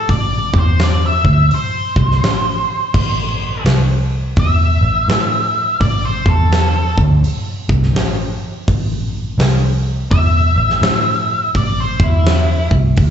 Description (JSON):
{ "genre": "blues rock power trio and southern rock", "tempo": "84 BPM", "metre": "4/4", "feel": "swing 63% on 8ths", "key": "A minor", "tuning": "A4 = 440 Hz", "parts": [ { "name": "octave-fuzz lead guitar", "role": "melody", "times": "0.0-12.7 s", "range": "E4 to E5", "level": "-18 LUFS", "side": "equal", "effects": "distortion, slapback echo" }, { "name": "vintage muted picked electric bass", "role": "bass", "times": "0.0-13.1 s", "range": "A1 to A2", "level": "-15 LUFS", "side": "equal", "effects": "none" }, { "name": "huge arena drum kit", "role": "drums", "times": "0.1-13.1 s", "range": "crash cymbal, hi-hat, kick drum, snare drum", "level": "-18 LUFS", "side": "equal", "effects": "none" } ], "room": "light reverb", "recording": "live gig heard through the venue's PA, club reverb, nothing above 7.9 kHz", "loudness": "-13 LUFS", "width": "side -9 dB against mid", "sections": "0.0-13.1 A section", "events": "lead electric guitar solo 0.0-13.1", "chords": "0.0 Am", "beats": "| 0.08 0.80 1.51 2.23 | 2.94 3.65 4.37 5.09 | 5.80 6.52 7.23 7.95 | 8.67 9.38 10.10 10.82 | 11.53 12.25 12.97" }